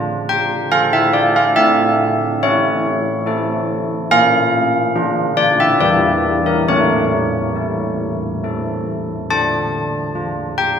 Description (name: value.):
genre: classical, tune for church bells.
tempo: 70 BPM.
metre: 3/4.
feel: straight.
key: unclear.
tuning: A4 = 440 Hz.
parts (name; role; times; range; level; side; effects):
old church bells; solo; 0.0-10.8 s; E3 to A5; -14 LUFS; equal; none.
room: moderate concert hall reverb, RT60 2.3 s.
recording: minimal, uncompressed stereo recording.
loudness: -14 LUFS.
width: side -7 dB against mid.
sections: 0.0-10.8 A section.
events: none.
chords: 0.0 Dm; 1.6 A; 4.1 Bb; 5.8 Em7b5; 6.7 A; 9.3 Dm.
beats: 0.72 | 1.57 2.42 3.25 | 4.10 4.95 5.80 | 6.68 7.55 8.43 | 9.30 10.16.